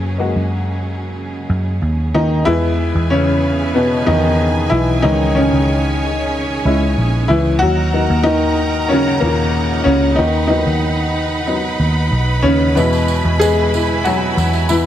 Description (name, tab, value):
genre	piano-driven pop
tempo	93 BPM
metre	4/4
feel	straight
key	unclear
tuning	A4 = 441 Hz
part	clear upright piano	accompaniment	0.0-14.9 s	A#2 to A#4	-16 LUFS	left 2 dB	none
part	rich studio string section	sustained chords	0.0-14.9 s	C#3 to B5	-23 LUFS	right 4 dB	none
part	vintage muted picked electric bass	bass	0.0-14.9 s	A#1 to F#2	-18 LUFS	equal	none
part	tambourine	percussion	12.8-14.8 s	none	-30 LUFS	right 15 dB	none
room	light reverb, studio reverb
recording	none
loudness	-13 LUFS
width	side -11 dB against mid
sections	0.0-2.5 A section; 2.5-14.9 B section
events	upright piano solo 0.0-2.5, 2.5-14.9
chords	0.0 F#7; 2.5 E; 5.0 C#m; 7.6 D#m; 10.2 B/D#; 12.8 E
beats	0.52 1.17 1.81 | 2.46 3.10 3.75 4.39 | 5.04 5.68 6.33 6.97 | 7.62 8.26 8.90 9.54 | 10.19 10.83 11.47 12.12 | 12.76 13.40 14.05 14.69